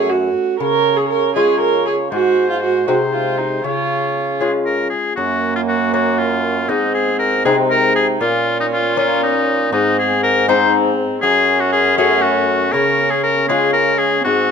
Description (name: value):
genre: classical, renaissance-style consort dance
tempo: 79 BPM (dotted quarters)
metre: 6/8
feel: straight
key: Db major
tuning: A4 = 439 Hz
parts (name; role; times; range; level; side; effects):
- clear oboe; melody; 0.0-14.5 s; Eb4 to Db5; -18 LUFS; left 3 dB; none
- rich viola; second line; 0.0-14.5 s; Bb3 to Bb4; -20 LUFS; right 6 dB; none
- lute; accompaniment; 0.0-14.5 s; Gb2 to Gb4; -20 LUFS; left 5 dB; none
- warm bassoon; bass; 0.0-14.5 s; Gb2 to Db3; -21 LUFS; right 2 dB; none
room: moderate stone room reverb, RT60 1.0 s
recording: dark, warm production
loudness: -14 LUFS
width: side -6 dB against mid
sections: 0.0-5.2 A section; 5.2-14.5 A section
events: none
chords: 0.0 Gbm; 0.6 Db; 2.1 Ab; 3.6 Db; 5.2 Gb; 6.7 Ab; 8.2 Bbm; 9.7 Ab; 11.2 Gbm; 12.7 Db